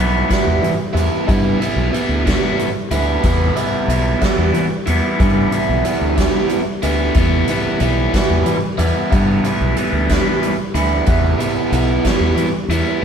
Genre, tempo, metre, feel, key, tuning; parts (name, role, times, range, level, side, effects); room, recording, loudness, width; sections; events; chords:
psychedelic rock; 61 BPM (dotted quarters); 6/8; straight; E minor; A4 = 440 Hz
overdriven electric guitar; riff; 0.0-13.0 s; E3 to E4; -18 LUFS; right 1 dB; phaser
fuzz fingered electric bass; bass; 0.0-12.8 s; B1 to E3; -19 LUFS; equal; overdrive
soft-mallet drum kit; drums; 0.3-12.9 s; hi-hat, kick drum, snare drum; -20 LUFS; equal
moderate stone room reverb, RT60 1.1 s; band playing live in one room; -14 LUFS; side -7 dB against mid
0.0-13.0 A section
0.0 Em